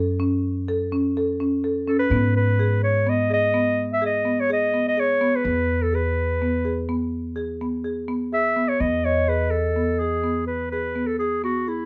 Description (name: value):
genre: contemporary instrumental, chamber music in an uneven meter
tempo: 126 BPM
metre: 7/4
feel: straight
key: E major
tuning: A4 = 440 Hz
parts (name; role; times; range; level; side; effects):
- marimba with medium mallets; arpeggios; 0.0-11.9 s; B3 to A4; -27 LUFS; equal; none
- upright bass; bass; 0.0-11.9 s; E2 to G#2; -29 LUFS; equal; none
- warm clarinet; melody; 1.9-11.9 s; E4 to E5; -25 LUFS; equal; none
- celesta; texture; 9.1-10.3 s; D#5; -30 LUFS; equal; none
room: moderate studio reverb, RT60 0.7 s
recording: dark, warm production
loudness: -23 LUFS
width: mono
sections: 0.0-8.8 A section; 8.8-11.9 A section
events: none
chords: 0.0 F#m; 2.1 G#madd11; 5.5 E